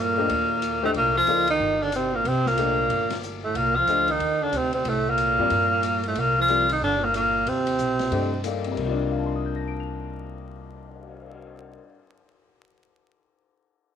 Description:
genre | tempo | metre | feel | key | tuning
modal jazz | 184 BPM | 4/4 | swing 63% on 8ths | C dorian | A4 = 435 Hz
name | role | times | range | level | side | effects
warm tenor saxophone | melody | 0.0-8.5 s | A3 to F4 | -22 LUFS | left 1 dB | none
breathy trombone | second line | 0.0-8.4 s | A2 to F3 | -29 LUFS | right 8 dB | none
upright bass | bass | 0.0-11.7 s | G1 to G2 | -31 LUFS | equal | none
clear concert grand piano | accompaniment | 0.2-12.8 s | C3 to F7 | -30 LUFS | left 8 dB | none
open jazz drum kit | drums | 0.3-11.3 s | crash cymbal, cymbal swell, hi-hat, kick drum, ride cymbal, snare drum | -39 LUFS | left 8 dB | none
room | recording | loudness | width
moderate echo chamber reverb, RT60 1.8 s, small room ambience | 1960s-style stereo with parts hard left and right, vinyl crackle | -21 LUFS | side -8 dB against mid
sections
0.0-8.8 A section; 8.8-11.4 B section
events
none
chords
0.0 Cm11

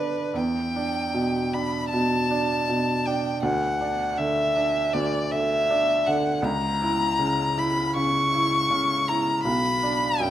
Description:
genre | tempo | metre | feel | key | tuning
classical, romantic duo for violin and grand piano | 80 BPM | 4/4 | rubato | unclear | A4 = 441 Hz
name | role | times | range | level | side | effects
clear violin | melody | 0.0-10.3 s | B4 to C#6 | -24 LUFS | left 1 dB | none
bright baby grand piano | accompaniment | 0.0-10.3 s | B1 to E4 | -25 LUFS | right 2 dB | none
room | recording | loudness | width
moderate recital hall reverb, RT60 1.4 s | none | -21 LUFS | side -11 dB against mid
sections
0.0-10.3 A section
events
none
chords
0.4 Em7; 3.4 N.C.; 6.4 C#m6; 9.4 Bm

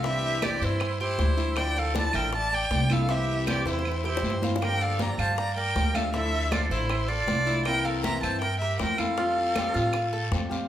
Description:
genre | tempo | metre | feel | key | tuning
latin, Cuban son and guajira | 158 BPM | 4/4 | straight | F major | A4 = 440 Hz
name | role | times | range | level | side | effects
warm violin | melody | 0.0-10.3 s | C5 to Bb5 | -29 LUFS | equal | none
bright silver concert flute | second line | 0.0-10.3 s | E4 to E5 | -34 LUFS | right 3 dB | none
flamenco guitar | accompaniment | 0.0-10.7 s | C3 to G4 | -34 LUFS | left 3 dB | none
Cuban tres | arpeggios | 0.0-10.7 s | E4 to F5 | -34 LUFS | right 2 dB | none
upright bass | bass | 0.0-10.7 s | A1 to A2 | -29 LUFS | equal | none
bongos | percussion | 0.0-10.7 s | none | -38 LUFS | left 5 dB | none
congas | percussion | 0.1-10.7 s | none | -35 LUFS | equal | none
guiro | percussion | 0.1-10.7 s | none | -40 LUFS | left 5 dB | none
claves | percussion | 0.4-10.1 s | none | -39 LUFS | right 5 dB | none
room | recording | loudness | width
moderate large studio reverb, RT60 0.8 s | band playing live in one room | -24 LUFS | side -11 dB against mid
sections
0.0-10.7 A section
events
drum fill 3.7-4.6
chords
0.0 Cadd9; 1.6 Dmadd9; 3.1 C7; 4.6 Gm7; 6.1 Dmadd9; 7.7 C7; 9.2 Fadd9

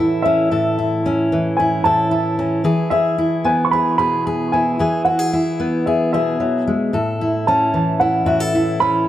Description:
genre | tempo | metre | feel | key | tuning
indie folk with a building arrangement | 112 BPM | 4/4 | straight | A major | A4 = 440 Hz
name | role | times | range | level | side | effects
dark upright piano | melody | 0.0-9.1 s | E5 to C#6 | -19 LUFS | equal | dub echo
fingerpicked steel-string acoustic guitar | accompaniment | 0.0-9.1 s | A2 to A4 | -18 LUFS | equal | none
room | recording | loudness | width
moderate plate reverb, RT60 2.5 s | echo-heavy mix | -15 LUFS | side -12 dB against mid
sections
0.0-9.1 A section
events
none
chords
0.0 A; 2.6 E; 6.9 A

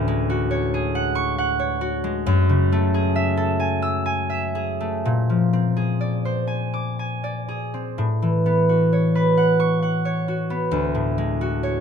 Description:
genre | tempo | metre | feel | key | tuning
classical, solo harp piece | 40-47 BPM (dotted quarters) | 6/8 | rubato | unclear | A4 = 440 Hz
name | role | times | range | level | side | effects
concert harp | solo | 0.0-11.8 s | D2 to E6 | -19 LUFS | left 1 dB | none
room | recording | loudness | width
little or no reverb | close, detailed microphones | -19 LUFS | side -7 dB against mid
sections
0.0-11.8 A section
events
none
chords
0.0 Dmaj7#11; 2.2 F#m9; 5.0 Bb9; 8.0 A69; 10.7 Dmaj7#11

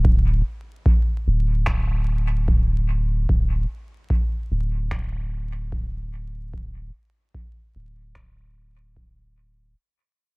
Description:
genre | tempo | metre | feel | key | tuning
ambient dub | 74 BPM | 4/4 | swing 57% on 16ths | unclear | A4 = 440 Hz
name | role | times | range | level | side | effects
soft dub sub bass | bass | 0.0-9.7 s | D1 | -22 LUFS | equal | none
electronic kick drum | drums | 0.0-9.1 s | none | -21 LUFS | equal | none
finger snaps | drums | 1.7-8.3 s | none | -33 LUFS | equal | dub echo
room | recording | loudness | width
little or no reverb | vinyl crackle | -21 LUFS | side -34 dB against mid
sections
0.0-9.8 A section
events
fade-out 0.0-9.8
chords
none

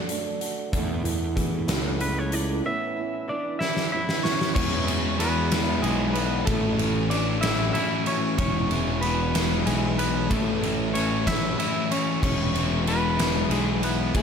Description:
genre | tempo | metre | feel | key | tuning
quiet-loud alternative rock | 63 BPM (dotted quarters) | 6/8 | straight | E mixolydian | A4 = 439 Hz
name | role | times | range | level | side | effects
twangy electric guitar | melody | 0.0-14.2 s | G#3 to E5 | -28 LUFS | equal | slapback echo
fingerpicked old ladder-braced acoustic guitar | arpeggios | 0.0-4.6 s | E2 to F#4 | -31 LUFS | right 6 dB | slapback echo, digital delay
big rock drum kit | drums | 0.1-14.2 s | crash cymbal, hi-hat, kick drum, ride cymbal, snare drum | -27 LUFS | equal | none
fuzz picked electric bass | bass | 0.7-14.2 s | E1 to E2 | -28 LUFS | equal | overdrive
overdriven semi-hollow guitar | riff | 4.5-14.2 s | A2 to E4 | -28 LUFS | left 9 dB | slapback echo
thick fuzz guitar | riff | 4.5-14.2 s | A2 to E4 | -32 LUFS | right 12 dB | distortion, slapback echo
room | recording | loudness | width
moderate concert hall reverb, RT60 2.4 s | big arena sound | -22 LUFS | side -7 dB against mid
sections
0.0-4.6 A section; 4.6-14.2 B section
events
drum fill 3.6-4.6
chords
0.0 D; 0.7 Esus4; 2.6 Aadd9; 4.6 E; 6.5 A; 8.4 E; 10.3 A; 12.2 E

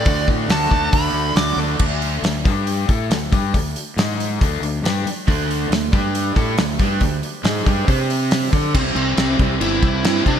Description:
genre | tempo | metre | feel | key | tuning
classic rock | 138 BPM | 4/4 | straight | D major | A4 = 444 Hz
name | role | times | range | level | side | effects
dark smooth lead guitar | melody | 0.0-1.6, 8.7-10.4 s | C4 to D6 | -22 LUFS | equal | overdrive, slapback echo
raw garage guitar | riff | 0.0-10.4 s | C3 to D5 | -25 LUFS | left 9 dB | overdrive, slapback echo
raw garage guitar | riff | 0.0-1.8, 5.3-10.4 s | C3 to D5 | -24 LUFS | right 11 dB | overdrive, spring reverb, slapback echo
fuzz fingered electric bass | bass | 0.0-10.4 s | G1 to D3 | -23 LUFS | equal | overdrive
damped 70s drum kit | drums | 0.1-10.4 s | crash cymbal, hi-hat, kick drum, snare drum | -20 LUFS | equal | none
room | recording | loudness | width
light reverb, small room ambience | none | -16 LUFS | side -9 dB against mid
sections
0.0-1.8 A section; 1.8-8.7 B section; 8.7-10.4 C section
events
lead electric guitar solo 0.0-1.8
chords
0.1 D; 1.8 D5; 2.4 G5; 2.9 D5; 4.0 G#5; 4.4 D5; 5.9 G5; 6.4 D5; 7.9 C5; 8.5 D5; 8.7 C

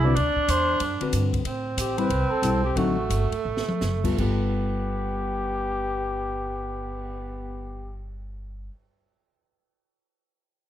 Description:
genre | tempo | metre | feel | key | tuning
jazz, small-group swing and bop | 159-187 BPM | 4/4 | swing 63% on 8ths | G mixolydian | A4 = 440 Hz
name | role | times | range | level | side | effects
breathy trumpet | melody | 0.0-8.0 s | F#4 to D5 | -29 LUFS | left 3 dB | plate reverb
warm tenor saxophone | second line | 0.0-8.0 s | A3 to E4 | -29 LUFS | right 5 dB | none
hollow-body jazz guitar | accompaniment | 0.0-8.7 s | D3 to B4 | -28 LUFS | left 4 dB | none
upright bass | bass | 0.0-8.7 s | F#1 to A2 | -28 LUFS | equal | none
open jazz drum kit | drums | 0.2-7.1 s | crash cymbal, cymbal swell, hi-hat, kick drum, ride cymbal, snare drum, toms | -33 LUFS | equal | none
room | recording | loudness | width
moderate club reverb, RT60 0.8 s | none | -23 LUFS | side -11 dB against mid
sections
0.0-1.5 A section; 1.5-4.2 B section; 4.2-7.2 C section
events
slowing down 1.5-4.2; drum fill 3.5-3.8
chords
0.2 D13; 1.5 Am7; 2.8 D7b9; 4.2 G9

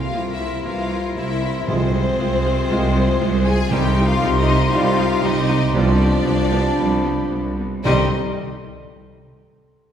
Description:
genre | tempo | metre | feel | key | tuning
classical, dramatic, fast romantic movement for symphony orchestra | 117 BPM | 4/4 | rubato | C minor | A4 = 440 Hz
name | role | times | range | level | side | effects
rich symphonic violin section | melody | 0.0-8.2 s | C5 to Ab5 | -27 LUFS | left 4 dB | none
bright oboe | second line | 0.0-8.1 s | G4 to Bb4 | -34 LUFS | equal | none
clear symphonic violin section | second line | 0.0-8.2 s | C4 to Ab4 | -29 LUFS | left 4 dB | none
hollow concert flute | second line | 0.0-8.2 s | B5 to C6 | -29 LUFS | left 3 dB | none
warm clarinet | second line | 0.0-8.1 s | D4 to F4 | -31 LUFS | left 1 dB | none
mellow bassoon | accompaniment | 0.0-8.1 s | C3 to G3 | -28 LUFS | right 1 dB | none
dark French horn section | sustained chords | 0.0-8.1 s | C4 to Ab4 | -26 LUFS | left 3 dB | none
clear symphonic cello section | bass | 0.0-8.2 s | C2 | -23 LUFS | right 2 dB | none
clear symphonic double bass section | bass | 0.0-8.2 s | C2 | -23 LUFS | right 2 dB | none
timpani | percussion | 0.0-8.1 s | C3 | -29 LUFS | equal | none
rich symphonic viola section | accompaniment | 0.1-8.2 s | G3 to F4 | -28 LUFS | equal | none
dark trombone section | sustained chords | 0.7-8.1 s | Eb3 to Bb3 | -31 LUFS | right 1 dB | none
room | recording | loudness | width
wet scoring stage reverb, RT60 2.0 s | heard from further back in the room | -16 LUFS | side -9 dB against mid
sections
0.0-7.9 A section; 7.9-9.9 B section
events
none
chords
0.0 C7; 1.7 Fm/C; 3.7 Cm; 5.7 G7/C; 7.9 Cm

